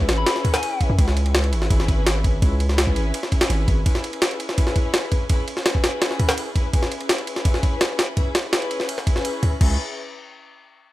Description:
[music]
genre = drum and bass, jungle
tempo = 167 BPM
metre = 4/4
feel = straight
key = C# minor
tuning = A4 = 439 Hz
[part]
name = dark studio string section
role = sustained chords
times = 0.0-9.7 s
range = C#4 to B4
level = -28 LUFS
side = left 2 dB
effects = none
[part]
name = long sustained 808-style bass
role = bass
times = 0.0-3.8, 9.6-9.8 s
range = G#1 to F#2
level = -20 LUFS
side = equal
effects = none
[part]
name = jungle sampler-style drum kit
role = drums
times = 0.0-9.7 s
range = crash cymbal, kick drum, ride cymbal, snare drum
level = -20 LUFS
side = equal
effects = small room ambience
[part]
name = soft struck synth lead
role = melody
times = 0.2-0.8 s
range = G#5 to B5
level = -29 LUFS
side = left 4 dB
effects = chorus, dub echo
[sound]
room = little or no reverb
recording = none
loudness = -18 LUFS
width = side -16 dB against mid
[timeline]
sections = 0.0-9.6 A section; 9.6-10.9 B section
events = none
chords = 0.0 C#m7

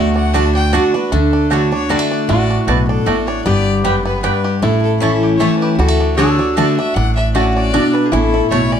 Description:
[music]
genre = bluegrass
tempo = 154 BPM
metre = 3/4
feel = swing 54% on 8ths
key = D major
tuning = A4 = 440 Hz
[part]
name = bluegrass banjo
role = melody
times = 0.0-8.8 s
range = G3 to G4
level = -23 LUFS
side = right 4 dB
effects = none
[part]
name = rich fiddle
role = melody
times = 0.0-8.8 s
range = G#4 to A5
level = -22 LUFS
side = left 5 dB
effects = none
[part]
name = lap resonator guitar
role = second line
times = 0.0-8.8 s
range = D4 to A4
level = -20 LUFS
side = equal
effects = none
[part]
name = picked steel-string acoustic guitar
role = accompaniment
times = 0.0-8.8 s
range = F#2 to F#4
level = -17 LUFS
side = left 1 dB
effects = none
[part]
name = upright bass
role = bass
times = 0.0-8.8 s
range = G1 to D2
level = -18 LUFS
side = right 1 dB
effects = none
[part]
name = mandolin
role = stabs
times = 0.3-8.6 s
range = A3 to A5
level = -21 LUFS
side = right 6 dB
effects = none
[sound]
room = light reverb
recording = dark, warm production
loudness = -12 LUFS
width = side -8 dB against mid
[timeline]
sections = 0.0-1.1 A section; 1.1-8.8 B section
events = fiddle solo 0.0-1.1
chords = 0.0 D; 3.5 G; 4.6 A; 5.8 D; 8.1 A

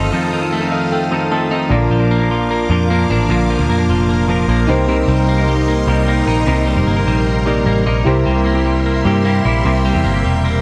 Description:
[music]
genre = indie pop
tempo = 151 BPM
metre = 4/4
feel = straight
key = Bb major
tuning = A4 = 439 Hz
[part]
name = semi-hollow electric guitar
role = accompaniment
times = 0.0-10.6 s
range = Bb2 to Bb4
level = -24 LUFS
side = equal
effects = none
[part]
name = soft electric-piano-like synth keys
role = accompaniment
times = 0.0-10.6 s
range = D4 to A5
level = -25 LUFS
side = equal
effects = chorus
[part]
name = string machine, full ensemble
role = sustained chords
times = 0.0-10.6 s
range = Eb4 to Eb6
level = -26 LUFS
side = equal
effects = ensemble chorus
[part]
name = twelve-string electric guitar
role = arpeggios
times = 0.0-10.6 s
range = F2 to E4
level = -20 LUFS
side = equal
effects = slapback echo
[part]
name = vintage muted picked electric bass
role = bass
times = 0.0-10.6 s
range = E1 to G2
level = -19 LUFS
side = equal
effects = none
[sound]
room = light reverb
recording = none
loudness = -15 LUFS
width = mono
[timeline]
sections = 0.0-1.7 A section; 1.7-10.6 A section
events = synth keys fill 0.5-1.7, 10.4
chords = 0.0 F7; 1.7 Bb; 4.7 Cm7; 8.1 C7

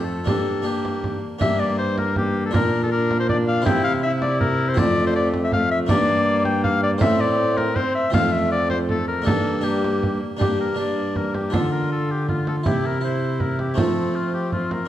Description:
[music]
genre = classical, renaissance-style consort dance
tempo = 160 BPM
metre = 3/4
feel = straight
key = G dorian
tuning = A4 = 440 Hz
[part]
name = clear oboe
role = melody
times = 0.0-14.9 s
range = F4 to G5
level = -24 LUFS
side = left 3 dB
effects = none
[part]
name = harpsichord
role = accompaniment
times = 0.0-14.9 s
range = F2 to Bb4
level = -26 LUFS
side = equal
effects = none
[part]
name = warm viola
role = accompaniment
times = 0.0-14.9 s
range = A3 to F4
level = -28 LUFS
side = left 1 dB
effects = none
[part]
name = dark trombone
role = bass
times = 0.0-14.9 s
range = F2 to F3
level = -25 LUFS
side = right 1 dB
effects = none
[part]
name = frame drum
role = percussion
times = 0.3-14.9 s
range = none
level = -25 LUFS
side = right 2 dB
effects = none
[sound]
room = moderate recital hall reverb, RT60 1.5 s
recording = dark, warm production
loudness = -19 LUFS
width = side -12 dB against mid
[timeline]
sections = 0.0-1.4 A section; 1.4-10.4 A section; 10.4-14.9 B section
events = none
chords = 0.3 Gm; 2.5 Bb; 3.7 C; 4.8 F; 5.9 Gm; 7.0 Am; 8.1 F; 9.3 Gm; 11.5 Dm; 12.7 C; 13.8 F

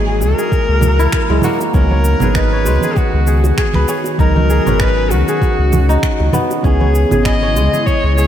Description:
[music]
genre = organic downtempo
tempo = 98 BPM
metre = 4/4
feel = swing 56% on 16ths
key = unclear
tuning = A4 = 440 Hz
[part]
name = rich kamancheh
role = melody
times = 0.0-8.3 s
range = F#4 to D#5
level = -19 LUFS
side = left 1 dB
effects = ping-pong delay
[part]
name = deep mellow chord stab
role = accompaniment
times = 0.0-8.3 s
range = E3 to A#5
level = -22 LUFS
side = right 2 dB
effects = chorus, sidechain pumping, ping-pong delay
[part]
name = airy breathy pad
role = sustained chords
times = 0.0-8.3 s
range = C#3 to F#4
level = -22 LUFS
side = equal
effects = chorus, sidechain pumping
[part]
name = kora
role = arpeggios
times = 0.0-8.3 s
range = G#3 to C#5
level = -21 LUFS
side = left 1 dB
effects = ping-pong delay
[part]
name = warm sub bass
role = bass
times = 0.0-8.3 s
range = G#1 to C#2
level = -14 LUFS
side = equal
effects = none
[part]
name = electronic cabasa and finger snaps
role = drums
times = 0.2-8.3 s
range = none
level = -26 LUFS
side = right 1 dB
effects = small room ambience
[part]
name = bongos and congas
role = percussion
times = 0.2-7.8 s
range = none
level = -23 LUFS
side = right 2 dB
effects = none
[part]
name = electronic kick drum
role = drums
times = 0.5-8.0 s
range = none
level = -17 LUFS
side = equal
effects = small room ambience
[sound]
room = moderate lush hall reverb, RT60 2.2 s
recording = dreamy mix soaked in reverb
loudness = -11 LUFS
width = side -10 dB against mid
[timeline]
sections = 0.0-8.3 A section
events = none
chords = 0.0 F#9; 1.7 Bmaj7; 6.6 C#m7

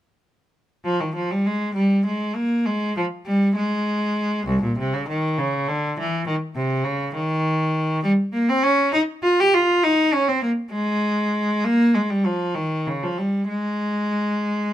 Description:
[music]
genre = classical, baroque-style suite movement for unaccompanied cello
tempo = 66 BPM (dotted quarters)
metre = 6/8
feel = rubato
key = Ab major from 8.0 s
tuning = A4 = 443 Hz
[part]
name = rich cello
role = solo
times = 0.8-14.7 s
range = C2 to G4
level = -19 LUFS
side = equal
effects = none
[sound]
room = light reverb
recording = none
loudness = -19 LUFS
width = side -12 dB against mid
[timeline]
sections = 0.8-14.7 A section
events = none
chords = none

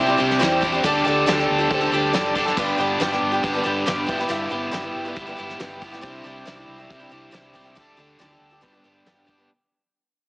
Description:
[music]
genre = folk rock and heartland rock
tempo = 138 BPM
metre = 4/4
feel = straight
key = G major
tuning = A4 = 441 Hz
[part]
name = dark upright piano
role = accompaniment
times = 0.0-2.5 s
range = E4 to E5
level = -27 LUFS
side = equal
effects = none
[part]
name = picked twelve-string acoustic guitar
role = accompaniment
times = 0.0-9.5 s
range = G2 to A4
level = -24 LUFS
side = equal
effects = none
[part]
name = overdriven electric guitar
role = riff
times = 0.0-9.5 s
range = G2 to A4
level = -23 LUFS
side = equal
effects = none
[part]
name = hollow-body short-scale fingered electric bass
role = bass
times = 0.0-9.5 s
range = F#1 to E2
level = -34 LUFS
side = equal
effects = none
[part]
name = soft brush drum kit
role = drums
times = 0.3-9.4 s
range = hi-hat, kick drum, snare drum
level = -28 LUFS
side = equal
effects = none
[sound]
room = light reverb, studio reverb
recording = heavily compressed radio sound, small speaker sound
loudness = -19 LUFS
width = side -31 dB against mid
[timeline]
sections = 0.0-9.5 A section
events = fade-out 0.0-9.5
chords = 0.0 Cadd9; 0.8 Dsus4; 2.6 G; 4.1 Em7/G; 6.0 Cadd9; 7.8 Dsus4; 8.6 G

